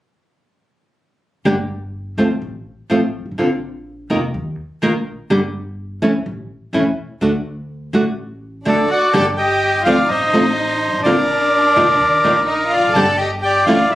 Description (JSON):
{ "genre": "tango", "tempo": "125 BPM", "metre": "4/4", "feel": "rubato", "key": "G minor", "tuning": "A4 = 440 Hz", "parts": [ { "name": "nylon-string guitar", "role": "accompaniment", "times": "1.5-13.8 s", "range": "D3 to Bb4", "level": "-17 LUFS", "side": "equal", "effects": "none" }, { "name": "upright bass", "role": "bass", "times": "1.5-13.9 s", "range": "E1 to Eb2", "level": "-28 LUFS", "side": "equal", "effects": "none" }, { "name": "bandoneon", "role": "melody", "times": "8.7-13.9 s", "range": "A4 to A5", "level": "-15 LUFS", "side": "equal", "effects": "plate reverb" }, { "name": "warm studio violin section", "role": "second line", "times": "8.7-13.9 s", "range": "D4 to A4", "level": "-21 LUFS", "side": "left 2 dB", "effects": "none" } ], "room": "moderate studio reverb, RT60 0.8 s", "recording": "recorded on a phone in the room, club reverb", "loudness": "-15 LUFS", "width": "side -15 dB against mid", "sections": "1.5-9.1 A section; 9.1-13.9 B section", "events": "none", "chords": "1.5 G5; 2.4 F/A; 3.4 Bb5; 4.3 Eb5; 5.3 G5; 6.3 A5; 7.2 D; 9.1 G5; 10.1 F/A; 11.1 Bb; 12.0 Ebsus2; 13.0 G5" }